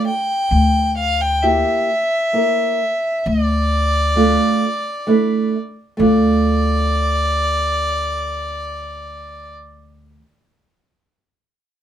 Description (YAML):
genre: klezmer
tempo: 66 BPM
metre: 3/4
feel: straight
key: D minor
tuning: A4 = 440 Hz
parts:
  - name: warm violin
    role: melody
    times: 0.0-9.5 s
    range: D5 to G5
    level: -19 LUFS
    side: equal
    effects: none
  - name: nylon-string guitar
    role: accompaniment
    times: 0.0-10.2 s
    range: A3 to Bb4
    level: -17 LUFS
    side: right 2 dB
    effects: none
  - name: upright bass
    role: bass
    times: 0.5-10.2 s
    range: D2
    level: -19 LUFS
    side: left 1 dB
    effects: none
room: wet small room reverb, RT60 0.5 s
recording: minimal, uncompressed stereo recording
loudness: -15 LUFS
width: side -10 dB against mid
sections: 0.0-6.0 A section; 6.0-8.7 B section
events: none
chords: 0.0 N.C.; 0.5 Edim/D; 3.3 Dm